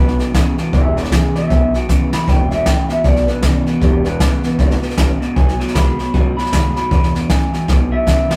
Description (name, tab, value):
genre	rockabilly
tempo	155 BPM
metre	4/4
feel	swing 61% on 8ths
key	E major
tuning	A4 = 437 Hz
part	electric guitar through a small old amp	melody	0.0-8.4 s	E4 to B5	-24 LUFS	equal	none
part	picked steel-string acoustic guitar	accompaniment	0.0-8.4 s	E2 to F#4	-26 LUFS	equal	none
part	electric guitar through a small old amp	riff	0.0-8.4 s	E2 to G#3	-25 LUFS	equal	none
part	upright bass	bass	0.0-8.3 s	E1 to E2	-25 LUFS	equal	none
part	jazz brush drum kit	drums	0.1-8.4 s	hi-hat, kick drum, snare drum	-18 LUFS	equal	none
room	moderate studio reverb, RT60 0.6 s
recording	rough rehearsal-room recording, warm saturation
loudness	-15 LUFS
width	mono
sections	0.0-8.4 A section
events	drum fill 1.9-2.3, 7.7-8.4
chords	0.0 E; 5.4 B7; 6.9 E